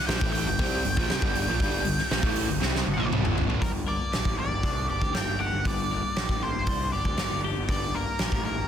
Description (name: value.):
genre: quiet-loud alternative rock.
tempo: 118 BPM.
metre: 4/4.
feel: straight.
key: G minor.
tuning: A4 = 439 Hz.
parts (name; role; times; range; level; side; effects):
octave-fuzz lead guitar; melody; 0.0-8.7 s; Bb4 to G5; -31 LUFS; equal; distortion.
fuzz guitar; riff; 0.1-3.6 s; G2 to C4; -29 LUFS; right 1 dB; distortion.
fuzz picked electric bass; bass; 0.1-8.7 s; G1 to D2; -31 LUFS; equal; overdrive.
huge arena drum kit; drums; 0.1-8.4 s; hi-hat, kick drum, snare drum, toms; -28 LUFS; equal; none.
twelve-string electric guitar; arpeggios; 3.6-8.7 s; G2 to G4; -35 LUFS; left 8 dB; phaser.
room: light reverb, studio reverb.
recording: dense, heavily limited modern master.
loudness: -24 LUFS.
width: side -9 dB against mid.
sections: 0.0-3.6 A section; 3.6-8.7 B section.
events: drum fill 2.6-3.6.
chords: 0.0 Gm.